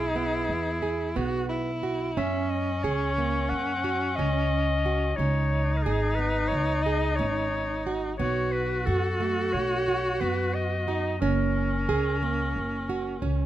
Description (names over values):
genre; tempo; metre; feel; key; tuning
contemporary instrumental, chamber music in an uneven meter; 179 BPM (eighths); 9/8; straight; unclear; A4 = 441 Hz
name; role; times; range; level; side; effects
bright clarinet; melody; 0.0-13.5 s; G#4 to F#5; -31 LUFS; left 3 dB; none
warm viola; second line; 0.0-13.5 s; C#4 to F#4; -30 LUFS; equal; none
nylon-string guitar; arpeggios; 0.0-13.5 s; A3 to G#4; -32 LUFS; right 6 dB; none
upright bass; bass; 0.0-13.5 s; F#1 to F#2; -29 LUFS; equal; none
room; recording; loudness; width
light reverb; close, detailed microphones; -24 LUFS; side -13 dB against mid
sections
0.0-13.5 A section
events
none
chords
0.0 E; 2.2 F#; 5.2 C#sus2; 8.2 B7; 11.2 F#add9